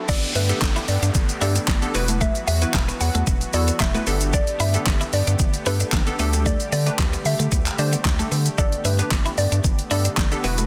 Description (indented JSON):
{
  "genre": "dance-pop",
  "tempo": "113 BPM",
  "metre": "4/4",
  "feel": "straight",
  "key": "G major",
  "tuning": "A4 = 440 Hz",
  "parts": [
    { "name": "wavetable chord stab", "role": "accompaniment", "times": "0.0-10.7 s", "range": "A3 to C5", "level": "-31 LUFS", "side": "equal", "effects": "phaser, sidechain pumping" },
    { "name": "lush unison pad", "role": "sustained chords", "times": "0.0-10.7 s", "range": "D3 to G4", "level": "-35 LUFS", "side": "equal", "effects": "chorus, sidechain pumping" },
    { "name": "riser and downlifter", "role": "sound effects", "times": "0.0-4.3 s", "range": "none", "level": "-35 LUFS", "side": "equal", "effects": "none" },
    { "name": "hollow square pluck", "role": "melody", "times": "0.1-10.1 s", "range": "B4 to F#5", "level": "-31 LUFS", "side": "equal", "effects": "chorus, sidechain pumping, tape echo" },
    { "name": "twelve-string electric guitar", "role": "riff", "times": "0.1-10.7 s", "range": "A3 to E4", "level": "-33 LUFS", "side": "equal", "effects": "analog chorus" },
    { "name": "round analog bass", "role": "bass", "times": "0.1-10.7 s", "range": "E1 to D3", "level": "-25 LUFS", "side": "equal", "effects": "sidechain pumping" },
    { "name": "pop drum kit", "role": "drums", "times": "0.1-10.7 s", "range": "crash cymbal, handclaps, hi-hat, kick drum, shaker, snare drum", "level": "-25 LUFS", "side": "equal", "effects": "overdrive" },
    { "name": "group handclap", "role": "percussion", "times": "0.6-10.3 s", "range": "none", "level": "barely audible", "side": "none", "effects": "none" }
  ],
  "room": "light reverb, digital ambience",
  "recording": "dense, heavily limited modern master",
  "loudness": "-21 LUFS",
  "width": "mono",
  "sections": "0.1-10.7 A section",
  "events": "drop 0.1-10.7",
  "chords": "0.1 Gadd9; 1.9 Esus2; 4.1 Gadd9; 6.2 Dsus4; 8.6 Gadd9"
}